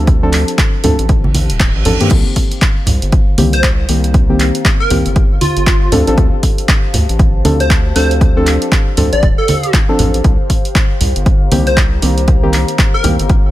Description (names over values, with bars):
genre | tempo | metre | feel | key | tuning
deep house | 118 BPM | 4/4 | swing 60% on 16ths | C dorian | A4 = 442 Hz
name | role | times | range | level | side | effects
deep mellow chord stab | stabs | 0.0-13.2 s | Eb3 to A4 | -17 LUFS | left 1 dB | chorus, sidechain pumping, ping-pong delay
round analog bass | bass | 0.0-13.5 s | D1 to G2 | -16 LUFS | equal | sidechain pumping
warbly tape-like pad | texture | 0.0-13.5 s | G4 to Bb5 | -25 LUFS | left 2 dB | chorus, built-in reverb, sidechain pumping
electronic kick drum | drums | 0.1-13.4 s | none | -12 LUFS | equal | none
punchy analog drum machine | drums | 0.1-13.4 s | crash cymbal, handclaps, hi-hat | -19 LUFS | equal | none
congas | percussion | 0.8-13.2 s | none | -18 LUFS | right 2 dB | none
reverse cymbal | sound effects | 1.3-2.1 s | none | -24 LUFS | right 8 dB | none
plucky unison lead | melody | 3.5-13.1 s | F4 to D5 | -19 LUFS | equal | lush chorus, cassette tape, ping-pong delay
room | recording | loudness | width
little or no reverb | none | -10 LUFS | side -15 dB against mid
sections
0.0-13.5 A section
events
fade-in on ambient pad 0.0-13.5; reverse cymbal 1.3-2.1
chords
0.0 Dm7; 2.1 Cm7; 5.9 Dm7; 10.2 Cm7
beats
| 0.07 0.58 1.09 1.60 | 2.11 2.62 3.13 3.63 | 4.14 4.65 5.16 5.67 | 6.18 6.68 7.19 7.70 | 8.21 8.72 9.23 9.74 | 10.24 10.75 11.26 11.77 | 12.28 12.79 13.29